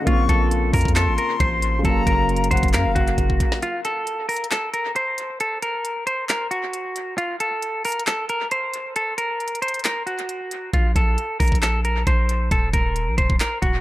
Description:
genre	hip hop, trap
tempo	135 BPM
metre	4/4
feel	half-time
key	Bb harmonic minor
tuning	A4 = 440 Hz
part	semi-hollow electric guitar	melody	0.0-13.8 s	F4 to C5	-23 LUFS	equal	low-pass filter, dub echo
part	silver concert flute	second line	0.0-3.2 s	F5 to Db6	-28 LUFS	left 6 dB	dub echo
part	dark grand piano	accompaniment	0.0-3.6 s	Db3 to F5	-26 LUFS	equal	low-pass filter, dub echo
part	long sustained 808-style bass	bass	0.1-3.4, 10.7-13.8 s	Eb1 to Gb2	-22 LUFS	equal	none
part	trap drum kit	drums	0.1-13.7 s	handclaps, hi-hat, kick drum, snare drum	-23 LUFS	equal	dub echo
room	little or no reverb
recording	echo-heavy mix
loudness	-19 LUFS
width	side -15 dB against mid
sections	0.0-3.6 A section; 3.6-13.8 B section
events	drum fill 3.2-3.6; break 3.6-10.7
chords	0.1 Bbmadd9; 1.8 Gbmaj7; 3.6 N.C.; 10.7 Bbsus2; 12.5 Eb5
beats	| 0.07 0.51 0.96 1.40 | 1.85 2.29 2.73 3.18 | 3.62 4.07 4.51 4.96 | 5.40 5.85 6.29 6.74 | 7.18 7.62 8.07 8.51 | 8.96 9.40 9.85 10.29 | 10.73 11.18 11.62 12.07 | 12.51 12.96 13.40

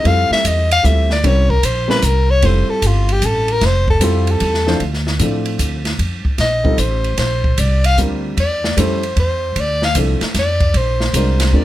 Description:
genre	jazz, small-group swing and bop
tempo	152 BPM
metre	3/4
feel	swing 66% on 8ths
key	F major, D minor from 4.8 s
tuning	A4 = 442 Hz
part	bright soprano saxophone	melody	0.0-11.6 s	F4 to F5	-18 LUFS	left 2 dB	none
part	dark baby grand piano	accompaniment	0.0-11.6 s	F3 to C5	-21 LUFS	equal	none
part	upright bass	bass	0.0-11.6 s	F1 to A2	-16 LUFS	equal	none
part	open jazz drum kit	drums	0.1-11.6 s	hi-hat, kick drum, ride cymbal, snare drum	-21 LUFS	right 1 dB	none
room	light reverb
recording	none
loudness	-13 LUFS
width	side -14 dB against mid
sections	0.0-4.8 A section; 4.8-11.6 A section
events	soprano saxophone solo 0.0-11.6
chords	0.0 Fmaj9; 1.2 C7b9; 2.4 Fmaj9; 4.8 Dm7; 6.0 F7; 7.2 Bb69; 8.4 A7; 9.6 Dm7; 10.7 Bb7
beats	| 0.05 0.44 0.84 | 1.24 1.63 2.03 | 2.42 2.82 3.22 | 3.61 4.01 4.41 | 4.80 5.20 5.59 | 5.99 6.39 6.78 | 7.18 7.58 7.97 | 8.37 8.76 9.16 | 9.55 9.95 10.35 | 10.74 11.13 11.53

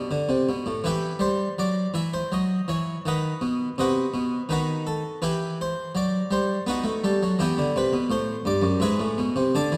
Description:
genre	classical, baroque-style suite movement for harpsichord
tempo	83 BPM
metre	3/4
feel	rubato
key	E minor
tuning	A4 = 440 Hz
part	harpsichord	solo	0.0-9.8 s	F#2 to A5	-25 LUFS	equal	none
room	moderate concert hall reverb, RT60 2.3 s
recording	dark, warm production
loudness	-25 LUFS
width	mono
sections	0.8-9.8 A section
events	none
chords	0.0 G (rootless); 0.8 Em; 2.3 F#5; 3.1 B; 5.2 Em; 6.7 B7; 7.4 Em; 8.8 E/G#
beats	0.09 | 0.84 1.58 2.31 | 3.06 3.78 4.51 | 5.23 5.95 6.67 | 7.39 8.09 8.80 | 9.54

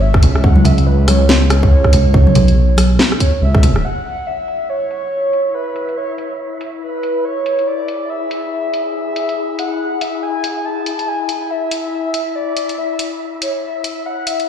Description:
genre	deep dubstep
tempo	141 BPM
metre	4/4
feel	swing 60% on 16ths, half-time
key	C# phrygian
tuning	A4 = 436 Hz
part	breathy flute-like synth lead	melody	0.0-14.5 s	B4 to A5	-20 LUFS	equal	wide subtle chorus, dub echo
part	dark detuned saw bass	bass	0.0-3.8 s	G#1 to C#2	-12 LUFS	equal	none
part	electronic kick drum	drums	0.1-3.6 s	none	-12 LUFS	equal	none
part	garage drum kit	drums	0.1-14.5 s	hi-hat, rim click, snare drum	-20 LUFS	left 1 dB	low-pass filter on hats, low-pass filter on snare
part	congas	percussion	0.2-3.7 s	none	-18 LUFS	left 1 dB	dub echo
part	wind-like tuned noise texture	texture	4.7-14.5 s	E4 to E5	-25 LUFS	left 4 dB	built-in reverb
room	light reverb, digital ambience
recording	played on a big sound system in a bare room, large studio reverb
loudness	-14 LUFS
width	side -9 dB against mid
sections	0.0-3.8 A section; 3.8-14.5 B section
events	filter sweep on drum 3.8-14.5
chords	0.0 C#m; 3.8 C#m (rootless)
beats	0.01 | 0.44 0.86 1.29 1.72 | 2.14 2.57 2.99 3.42 | 3.84 4.27 4.69 5.12 | 5.54 5.97 6.40 6.82 | 7.25 7.67 8.10 8.52 | 8.95 9.38 9.80 10.23 | 10.65 11.08 11.50 11.93 | 12.35 12.78 13.21 13.63 | 14.06 14.48

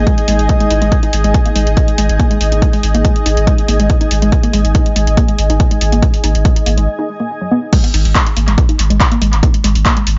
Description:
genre	driving peak-time techno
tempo	141 BPM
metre	4/4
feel	straight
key	unclear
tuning	A4 = 441 Hz
part	woody wave-folded pluck	riff	0.0-10.0 s	F#3 to E4	-22 LUFS	equal	lush chorus, sidechain pumping, tape echo
part	saturated sub bass	bass	0.0-10.2 s	G#1	-16 LUFS	equal	overdrive, sidechain pumping, low-pass filter
part	granular cloud pad	texture	0.0-6.9 s	D#4 to G#5	-22 LUFS	equal	built-in reverb, sidechain pumping
part	electronic kick drum	drums	0.1-9.9 s	none	-15 LUFS	equal	none
part	techno drum kit	drums	0.1-10.2 s	crash cymbal, handclaps, hi-hat	-22 LUFS	equal	overdrive, sidechain pumping on hats, sidechain pumping on cymbals, tape echo
room	light reverb, digital ambience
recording	echo-heavy mix, nothing above 7.5 kHz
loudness	-13 LUFS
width	mono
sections	0.0-7.7 A section; 7.7-10.2 B section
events	break 6.9-7.7; drop 7.7-10.2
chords	0.0 G#5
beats	0.07 0.49 | 0.92 1.34 1.77 2.19 | 2.62 3.05 3.47 3.90 | 4.32 4.75 5.17 5.60 | 6.03 6.45 6.88 7.30 | 7.73 8.15 8.58 9.00 | 9.43 9.86

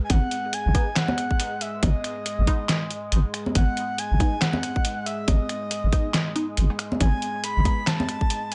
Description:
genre	deep dubstep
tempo	139 BPM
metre	4/4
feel	swing 59% on 16ths, half-time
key	G# phrygian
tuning	A4 = 439 Hz
part	breathy flute-like synth lead	melody	0.0-8.5 s	D#5 to B5	-33 LUFS	equal	chorus, dub echo
part	deep dark ambient pad	sustained chords	0.0-8.5 s	G#3	-38 LUFS	equal	chorus, built-in reverb
part	deep soft wobble bass	bass	0.1-7.6 s	G#1	-24 LUFS	equal	chorus
part	electronic kick drum	drums	0.1-8.3 s	none	-26 LUFS	equal	none
part	trip hop sampler-style drum kit	drums	0.1-8.5 s	finger snaps, handclaps, hi-hat, snare drum	-29 LUFS	equal	none
part	congas	percussion	0.1-8.1 s	none	-32 LUFS	equal	none
part	filtered dub chord stab	stabs	0.7-7.8 s	G#3 to D#4	-37 LUFS	equal	phaser, analog chorus, dub echo
room	digital ambience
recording	nothing above 10.8 kHz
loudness	-24 LUFS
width	mono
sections	0.0-8.5 A section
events	none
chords	0.0 G#5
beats	| 0.10 0.53 0.96 1.40 | 1.83 2.26 2.69 3.12 | 3.55 3.98 4.42 4.85 | 5.28 5.71 6.14 6.58 | 7.01 7.44 7.87 8.30

